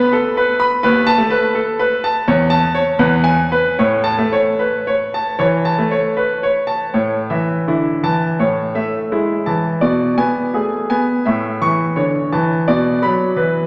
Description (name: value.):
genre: classical, baroque-style suite movement for grand piano.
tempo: 74-86 BPM.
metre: 4/4.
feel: rubato.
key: A major.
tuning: A4 = 440 Hz.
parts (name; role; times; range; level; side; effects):
bright grand piano; solo; 0.0-13.7 s; D#2 to C#6; -16 LUFS; equal; none.
room: wet church reverb, RT60 2.8 s.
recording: none.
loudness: -17 LUFS.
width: mono.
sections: 0.0-6.9 A section; 6.9-13.7 B section.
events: none.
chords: 0.0 N.C.; 0.8 B7/D#; 2.3 A/E; 3.0 E; 3.8 A; 9.8 G#dim/B; 11.3 A; 12.7 Bm.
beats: 0.14 | 0.85 1.56 2.28 3.01 | 3.78 4.58 5.38 6.15 | 6.93 7.67 8.39 9.11 | 9.82 10.54 11.25 11.96 | 12.68 13.38.